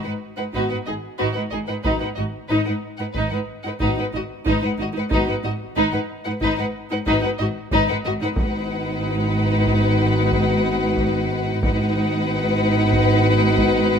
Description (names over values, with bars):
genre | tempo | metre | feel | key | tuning
cinematic, suspense film score | 92 BPM | 5/4 | straight | G# minor | A4 = 445 Hz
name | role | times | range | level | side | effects
warm chamber violin section | melody | 0.0-14.0 s | B4 to F#5 | -30 LUFS | left 3 dB | none
warm chamber violin section | second line | 0.0-14.0 s | D#4 to B4 | -25 LUFS | left 4 dB | none
warm chamber viola section | accompaniment | 0.0-14.0 s | D#4 | -26 LUFS | right 1 dB | none
dark chamber cello section | bass | 0.1-14.0 s | G#2 | -26 LUFS | right 1 dB | none
warm French horn section | sustained chords | 0.5-14.0 s | B3 to F#4 | -27 LUFS | left 3 dB | none
warm chamber double bass section | bass | 0.5-14.0 s | G#1 | -25 LUFS | right 3 dB | none
solo taiko drums | drums | 1.8-14.0 s | none | -27 LUFS | equal | none
room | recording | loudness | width
moderate scoring stage reverb, RT60 2.0 s | close, detailed microphones | -19 LUFS | side -7 dB against mid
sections
0.0-14.0 A section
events
none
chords
0.0 G#m7